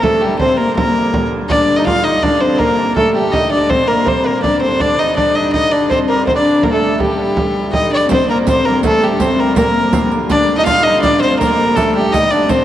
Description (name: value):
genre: medieval dance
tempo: 164 BPM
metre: 3/4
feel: straight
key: G minor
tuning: A4 = 441 Hz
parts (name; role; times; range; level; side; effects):
- rich fiddle; melody; 0.0-12.6 s; G4 to F5; -15 LUFS; left 1 dB; none
- dark viola da gamba; second line; 0.0-12.6 s; G3 to F4; -18 LUFS; left 3 dB; none
- lute; second line; 0.0-12.6 s; G3 to F4; -21 LUFS; right 3 dB; none
- warm hurdy-gurdy; drone; 0.0-12.6 s; G2 to D3; -24 LUFS; right 1 dB; none
- frame drum; percussion; 0.0-12.6 s; none; -21 LUFS; right 2 dB; none
- riq; percussion; 8.1-12.6 s; none; -24 LUFS; right 3 dB; none
room: wet church reverb, RT60 3.5 s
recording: worn, warbling old tape, cassette tape, warbly pitch drift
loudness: -11 LUFS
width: side -12 dB against mid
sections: 0.0-8.1 A section; 8.1-12.6 A section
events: none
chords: none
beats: 0.02 | 0.39 0.76 1.13 | 1.49 1.86 2.23 | 2.60 2.96 3.33 | 3.70 4.07 4.43 | 4.80 5.17 5.54 | 5.90 6.27 6.63 | 7.00 7.37 7.74 | 8.10 8.47 8.83 | 9.20 9.57 9.93 | 10.30 10.66 11.03 | 11.40 11.76 12.13 | 12.49